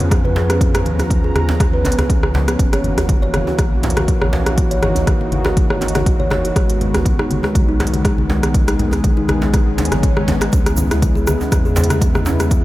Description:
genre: afro house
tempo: 121 BPM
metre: 4/4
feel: swing 54% on 16ths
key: C# dorian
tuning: A4 = 440 Hz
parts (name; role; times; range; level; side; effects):
- warm analog pad; sustained chords; 0.0-12.6 s; C#3 to A#5; -23 LUFS; equal; chorus, sidechain pumping
- kalimba; arpeggios; 0.0-12.5 s; D#3 to C#5; -23 LUFS; equal; sidechain pumping, low-pass filter, diffuse ambient delay
- warm sub bass; bass; 0.0-12.6 s; F#1 to E#2; -21 LUFS; equal; sidechain pumping
- afro-pop drum kit; drums; 0.0-12.6 s; hi-hat, rim click, toms; -22 LUFS; equal; studio reverb
- congas; percussion; 0.0-12.4 s; none; -26 LUFS; left 2 dB; none
- electronic kick drum; drums; 0.1-12.6 s; none; -17 LUFS; equal; overdrive, studio reverb
- djembe; percussion; 0.4-12.4 s; none; -26 LUFS; right 1 dB; none
- swell; sound effects; 9.7-10.5 s; none; -32 LUFS; equal; none
- egg shaker; percussion; 10.5-12.6 s; none; -33 LUFS; right 5 dB; none
room: light reverb, studio ambience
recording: none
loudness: -14 LUFS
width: side -16 dB against mid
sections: 0.0-12.6 A section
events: swell 9.7-10.5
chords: 0.0 C#7; 2.6 F#7; 6.6 G#m7; 10.5 C#m7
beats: 0.12 | 0.61 1.11 1.60 2.10 | 2.60 3.09 3.59 4.08 | 4.58 5.07 5.57 6.07 | 6.56 7.06 7.55 8.05 | 8.54 9.04 9.54 10.03 | 10.53 11.02 11.52 12.02 | 12.51

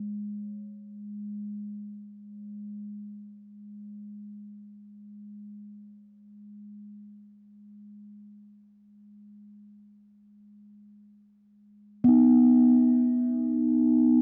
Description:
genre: world meditative, free-time meditation music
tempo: free time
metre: none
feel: none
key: G# minor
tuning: A4 = 439 Hz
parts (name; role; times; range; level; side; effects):
- bronze singing bowl; solo; 0.0-2.6, 12.0-14.2 s; G#3 to D#4; -26 LUFS; equal; none
room: wet huge ambient reverb, RT60 3.8 s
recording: dark, warm production, nothing above 7.8 kHz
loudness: -23 LUFS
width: mono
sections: 0.0-14.2 A section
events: none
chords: none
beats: free time

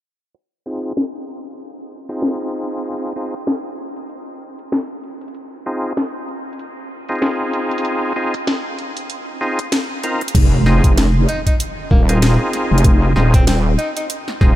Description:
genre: glitch hop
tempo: 96 BPM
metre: 4/4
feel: swing 57% on 16ths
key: F minor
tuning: A4 = 439 Hz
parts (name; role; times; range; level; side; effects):
- drum and bass drum kit; drums; 0.3-14.6 s; crash cymbal, hi-hat, snare drum; -24 LUFS; left 1 dB; overdrive, low-pass filter on hats, low-pass filter on snare, low-pass filter on cymbals
- overdriven tonewheel organ; stabs; 0.7-14.6 s; C4 to Bb4; -23 LUFS; equal; chorus vibrato, sidechain pumping, low-pass filter, analog delay
- wobble bass; bass; 10.3-14.6 s; Eb1 to F1; -14 LUFS; equal; chorus, tube saturation
- electronic kick drum; drums; 10.3-14.6 s; none; -13 LUFS; equal; none
- impact; sound effects; 10.3-12.8 s; none; -24 LUFS; equal; none
- warm tenor saxophone; melody; 11.3-14.1 s; Bb3 to Eb4; -26 LUFS; equal; analog delay
room: light reverb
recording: low-pass filter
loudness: -15 LUFS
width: side -14 dB against mid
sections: 0.3-10.3 A section; 10.3-14.6 B section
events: filter sweep on drum 0.3-10.3; filter sweep on tonewheel organ 0.3-10.3; filter sweep 0.3-10.3; drop 10.3-14.6; impact 10.3-12.8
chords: 0.3 Fm7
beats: | 0.35 0.97 1.60 2.22 | 2.85 3.47 4.10 4.72 | 5.35 5.97 6.60 7.22 | 7.85 8.47 9.10 9.72 | 10.35 10.97 11.60 12.22 | 12.85 13.47 14.10

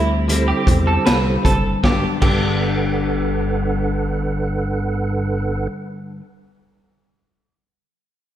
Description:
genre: indie pop, bedroom pop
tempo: 78 BPM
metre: 4/4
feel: straight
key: G major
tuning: A4 = 440 Hz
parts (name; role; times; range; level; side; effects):
- electric guitar through a small old amp; second line; 0.0-4.1 s; G4 to B4; -24 LUFS; right 2 dB; lush chorus, digital delay
- clean electric guitar; accompaniment; 0.0-6.2 s; G2 to E4; -23 LUFS; left 2 dB; wide subtle chorus, warbly pitch drift
- mellow tonewheel organ; accompaniment; 0.0-5.7 s; D4 to F#5; -25 LUFS; right 4 dB; chorus vibrato, fast rotary speaker, cassette tape
- chorused synth bass; bass; 0.0-5.7 s; F#1 to E2; -22 LUFS; equal; none
- raw garage drum kit; drums; 0.3-2.4 s; crash cymbal, hi-hat, kick drum, snare drum; -20 LUFS; equal; gated reverb
room: moderate lush hall reverb, RT60 1.8 s, studio ambience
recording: bright 1980s-style digital production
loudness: -16 LUFS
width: side -11 dB against mid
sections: 0.0-1.8 A section; 1.8-4.9 B section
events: none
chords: 0.0 D9sus4; 1.8 Gmaj7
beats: 0.29 1.06 | 1.83 2.60 3.38 4.14

